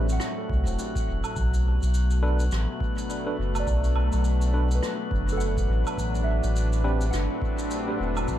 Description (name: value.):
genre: ambient dub.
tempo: 104 BPM.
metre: 4/4.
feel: swing 59% on 16ths.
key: unclear.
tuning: A4 = 440 Hz.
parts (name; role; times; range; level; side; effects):
warbly tape-like pad; sustained chords; 0.0-8.4 s; A2 to B4; -32 LUFS; left 2 dB; chorus, built-in reverb.
soft synth bell; arpeggios; 0.0-8.4 s; A4 to F#5; -36 LUFS; right 2 dB; chorus, phaser, dub echo.
tine electric piano; stabs; 0.0-8.0 s; C4 to B4; -36 LUFS; right 3 dB; overdrive, fast stereo tremolo, dub echo.
warm sub bass; bass; 0.0-8.4 s; E1 to C2; -24 LUFS; equal; none.
drifting glass-harmonics texture; texture; 0.0-8.4 s; F#3 to F#4; -36 LUFS; left 2 dB; chorus, built-in reverb.
shaker, rim click and woodblock; drums; 0.1-8.4 s; none; -37 LUFS; right 2 dB; dub echo.
electronic kick drum; drums; 0.5-8.4 s; none; -31 LUFS; equal; none.
room: small room ambience.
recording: none.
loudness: -23 LUFS.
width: side -12 dB against mid.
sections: 0.0-8.4 A section.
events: none.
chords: 0.0 Amadd11; 1.4 Bm7; 6.0 Am11.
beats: 0.21 0.78 | 1.36 1.94 2.51 3.09 | 3.67 4.25 4.82 5.40 | 5.98 6.55 7.13 7.71 | 8.28.